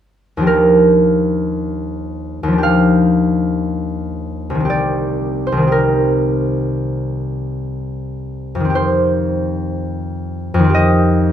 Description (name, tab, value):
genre	classical, solo harp piece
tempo	59 BPM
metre	4/4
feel	rubato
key	Eb major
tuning	A4 = 440 Hz
part	concert harp	solo	0.4-11.3 s	C2 to F5	-14 LUFS	equal	none
room	light reverb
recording	faint mains hum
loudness	-14 LUFS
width	side -10 dB against mid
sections	0.5-11.3 A section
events	none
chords	0.5 Ebmaj9; 8.7 Fsus2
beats	| 0.48 1.52 2.64 3.69 | 4.71 5.72 6.72 7.74 | 8.75 9.75 10.75